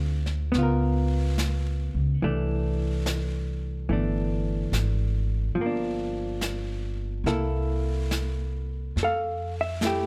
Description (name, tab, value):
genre	jazz ballad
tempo	72 BPM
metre	4/4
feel	swing 68% on 8ths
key	unclear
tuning	A4 = 440 Hz
part	hollow-body jazz guitar	accompaniment	0.0-10.1 s	D3 to F5	-32 LUFS	equal	none
part	upright bass	bass	0.0-10.1 s	G1 to F2	-29 LUFS	equal	none
part	jazz brush drum kit	drums	0.3-10.1 s	brushed snare drum, hi-hat, snare drum	-38 LUFS	equal	none
room	light reverb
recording	dark, warm production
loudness	-27 LUFS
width	mono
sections	0.0-10.1 A section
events	none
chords	0.0 Dm7; 0.6 C#6; 2.2 C69; 5.6 Gm7; 7.2 C6; 9.0 Fmaj9